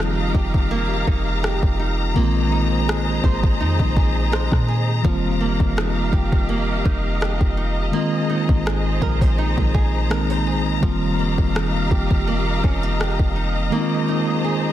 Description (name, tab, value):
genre	contemporary R&B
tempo	83 BPM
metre	4/4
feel	swing 54% on 16ths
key	F minor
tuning	A4 = 438 Hz
part	mellow tine electric piano	accompaniment	0.0-14.7 s	D3 to F4	-24 LUFS	left 1 dB	medium stereo tremolo
part	dark studio string section	sustained chords	0.0-14.7 s	G4 to Bb5	-26 LUFS	left 2 dB	sidechain pumping
part	flamenco guitar	arpeggios	0.0-14.7 s	F3 to C5	-28 LUFS	right 7 dB	digital delay
part	clean 808-style bass	bass	0.0-13.7 s	F1 to Bb2	-22 LUFS	equal	none
part	smooth R&B drum kit	drums	0.0-13.3 s	kick drum, rim click	-21 LUFS	equal	none
room	digital ambience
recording	dense, heavily limited modern master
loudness	-18 LUFS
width	side -12 dB against mid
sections	0.0-14.7 A section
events	break 0.0-5.0; hi-hats muted 2.2-5.0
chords	0.0 F9sus4; 2.2 Bb9sus4; 5.0 F9sus4; 7.9 Bb9sus4; 10.8 F9sus4; 13.7 Bb9sus4